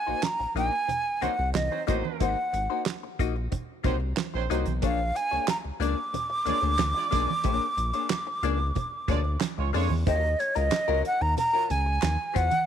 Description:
funk; 92 BPM; 4/4; straight; Eb dorian; A4 = 439 Hz
breathy jazz flute; melody; 0.0-12.7 s; Db5 to D6; -27 LUFS; right 1 dB
hollow-body jazz guitar; accompaniment; 0.1-12.5 s; Gb3 to Eb5; -33 LUFS; left 15 dB; wah
round analog bass; bass; 0.1-12.5 s; Ab1 to F2; -28 LUFS; equal
damped 70s drum kit; drums; 0.2-12.7 s; handclaps, hi-hat, kick drum, snare drum; -31 LUFS; right 4 dB
congas; percussion; 0.2-12.7 s; -38 LUFS; right 9 dB
mellow horn section; second line; 1.2-10.0 s; Gb3 to D5; -35 LUFS; right 12 dB
group handclap; percussion; 5.5-12.2 s; -44 LUFS; left 15 dB
light reverb, studio ambience; 1960s-style stereo with parts hard left and right; -24 LUFS; side -9 dB against mid
0.0-10.1 A section; 10.1-12.7 B section
0.0 Ab9 (rootless); 4.8 Bb7#9; 10.1 Ebm9
0.24 0.90 1.55 | 2.21 2.87 3.52 4.18 | 4.83 5.49 6.15 6.80 | 7.46 8.11 8.76 9.42 | 10.07 10.72 11.38 12.03

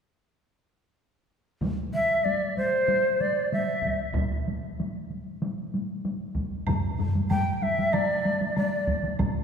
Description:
japanese traditional, taiko drum ensemble; 95 BPM; 4/4; straight; A4 = 440 Hz
taiko ensemble; percussion; 1.6-9.3 s; -30 LUFS; equal
taiko ensemble; percussion; 1.6-9.3 s; -32 LUFS; equal
bright shakuhachi; melody; 1.9-9.0 s; C5 to G5; -25 LUFS; equal
taiko ensemble; percussion; 6.7-7.9 s; -29 LUFS; equal
woodblock; percussion; 6.7-9.3 s; -40 LUFS; right 1 dB
taiko ensemble; percussion; 9.2-9.3 s; -32 LUFS; right 2 dB
wet scoring stage reverb, RT60 2.2 s; heard from further back in the room; -24 LUFS; side -7 dB against mid
1.6-6.7 A section; 6.7-9.4 B section
| 1.62 2.25 2.88 3.51 | 4.14 4.78 5.41 6.04 | 6.67 7.30 7.93 8.56 | 9.19

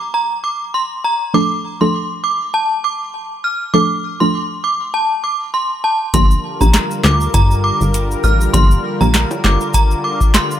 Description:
dancehall; 100 BPM; 4/4; swing 56% on 16ths; G minor; A4 = 439 Hz
synth chime; melody; 0.0-10.5 s; A5 to F6; -18 LUFS; right 1 dB; ensemble chorus, digital delay
soft round pluck; accompaniment; 1.3-9.1 s; F3 to A4; -17 LUFS; right 2 dB; chorus
warm analog pad; sustained chords; 6.1-10.6 s; D3 to Bb4; -22 LUFS; left 1 dB; chorus, sidechain pumping
plucky analog bass; bass; 6.1-9.6 s; G1 to D2; -15 LUFS; equal
booming analog drum machine; drums; 6.1-10.5 s; handclaps, hi-hat, kick drum, snare drum; -14 LUFS; left 1 dB
tube shaker and timbales; percussion; 6.1-10.6 s; -30 LUFS; left 2 dB
little or no reverb; -13 LUFS; side -10 dB against mid
0.0-10.6 A section
0.0 N.C.; 1.3 Dm; 6.1 Gm7
0.14 0.74 | 1.34 1.94 2.54 3.14 | 3.74 4.34 4.94 5.54 | 6.14 6.74 7.34 7.94 | 8.54 9.14 9.74 10.34

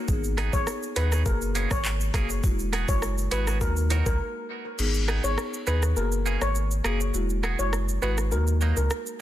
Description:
dancehall; 102 BPM; 4/4; straight; G# minor; A4 = 440 Hz
marimba with soft mallets; accompaniment; 0.1-9.1 s; G#3 to G#4; -33 LUFS; left 3 dB
warm sub bass; bass; 0.1-8.9 s; E1 to D#2; -26 LUFS; equal
island pop drum kit; drums; 0.1-9.2 s; crash cymbal, handclaps, hi-hat, kick drum, rim click, shaker; -29 LUFS; equal
egg shaker and timbales; percussion; 0.1-4.2 s; -40 LUFS; right 3 dB
clean electric guitar; arpeggios; 0.4-8.8 s; F#3 to A#4; -35 LUFS; right 6 dB; digital delay
steel pan; melody; 0.5-8.9 s; A#4 to C#5; -32 LUFS; left 1 dB; digital delay
little or no reverb; dense, heavily limited modern master; -23 LUFS; side -13 dB against mid
0.0-4.8 A section; 4.8-9.2 B section
break 4.2-4.8; kick muted 4.8-9.2
0.1 G#m; 1.3 F#add9; 2.4 Eadd9; 3.6 D#m; 4.8 G#m; 6.0 F#add9; 7.1 Eadd9; 8.3 D#m
| 0.08 0.67 1.26 1.85 | 2.44 3.02 3.61 4.20 | 4.79 5.38 5.96 6.55 | 7.14 7.73 8.32 8.91

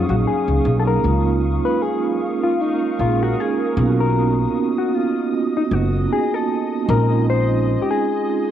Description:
lo-fi hip hop; 77 BPM; 4/4; swing 56% on 16ths; Db major; A4 = 439 Hz
hollow-body jazz guitar; melody; 0.0-8.5 s; Db4 to C5; -22 LUFS; left 6 dB; low-pass filter, plate reverb, analog delay
vibraphone with soft mallets; accompaniment; 0.0-8.5 s; Gb3 to Ab4; -21 LUFS; right 7 dB; cassette tape, low-pass filter, plate reverb
granular cloud pad; sustained chords; 0.0-8.5 s; Gb3 to Eb6; -30 LUFS; equal; built-in reverb, low-pass filter, cassette tape, plate reverb
upright bass; bass; 0.0-7.7 s; Gb1 to Db2; -19 LUFS; left 1 dB
moderate studio reverb, RT60 0.6 s; home recording on cassette; -17 LUFS; side -10 dB against mid
0.0-1.0 A section; 1.0-8.5 B section
0.0 Ebm9; 1.0 Db69; 3.8 Cbmaj9; 6.9 Bbm11
0.25 | 1.03 1.81 2.59 3.37 | 4.14 4.92 5.70 6.48 | 7.26 8.04

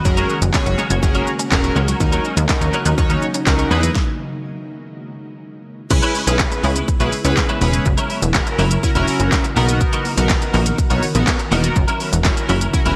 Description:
dance-pop; 123 BPM; 4/4; straight; A4 = 439 Hz
chorused polysynth; accompaniment; 0.0-13.0 s; B3 to C#5; -25 LUFS; equal; sidechain pumping
ethereal airy pad; sustained chords; 0.0-13.0 s; C#3 to A#4; -30 LUFS; equal; ensemble chorus, built-in reverb, sidechain pumping
unison pluck; arpeggios; 0.0-3.9 s; D#3 to G#6; -31 LUFS; equal
twelve-string electric guitar; riff; 0.0-13.0 s; F#3 to B4; -26 LUFS; equal; ensemble chorus
plucky analog bass; bass; 0.1-12.9 s; E1 to E2; -21 LUFS; equal; sidechain pumping
pop drum kit; drums; 0.1-13.0 s; crash cymbal, handclaps, hi-hat, kick drum, shaker, snare drum; -21 LUFS; equal; gated reverb
light reverb, digital ambience; bright 1980s-style digital production; -17 LUFS; mono
0.0-5.9 A section; 5.9-13.0 B section
stop 4.0-5.9
0.1 F#add9; 2.0 D#m7; 3.7 Emaj7; 5.9 C#m7; 7.9 F#7; 9.6 Bmaj7; 11.8 F#7
| 0.05 0.54 1.03 1.52 | 2.00 2.49 2.98 3.47 | 3.96 4.44 4.93 5.42 | 5.91 6.39 6.88 7.37 | 7.86 8.35 8.83 9.32 | 9.81 10.30 10.78 11.27 | 11.76 12.25 12.73

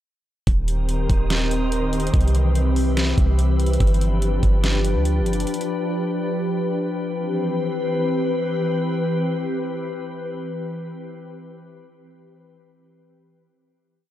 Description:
hip hop, atmospheric cloud-rap; 144 BPM; 4/4; half-time; C major; A4 = 440 Hz
glassy FM pad; sustained chords; 0.5-10.9 s; Eb3 to B4; -23 LUFS; left 1 dB; ensemble chorus, built-in reverb, sidechain pumping
soft 808-style bass; bass; 0.5-5.5 s; Eb1 to D2; -20 LUFS; equal
smooth R&B drum kit; drums; 0.5-5.7 s; hi-hat, kick drum, snare drum; -22 LUFS; equal
wind-like tuned noise texture; texture; 0.8-3.8 s; C4 to E5; -34 LUFS; left 1 dB; built-in reverb
digital ambience; dry, gritty hardware recording; -19 LUFS; side -12 dB against mid
0.5-7.1 verse; 7.1-10.5 final chord
0.5 Eb6; 2.1 Cmaj7; 3.8 G7; 7.1 Cmaj7
| 0.47 0.89 1.30 1.72 | 2.14 2.55 2.97 3.39 | 3.80 4.22 4.64 5.05 | 5.47 5.89 6.30 6.72 | 7.14 7.55 7.97 8.39 | 8.80 9.22 9.64 10.05

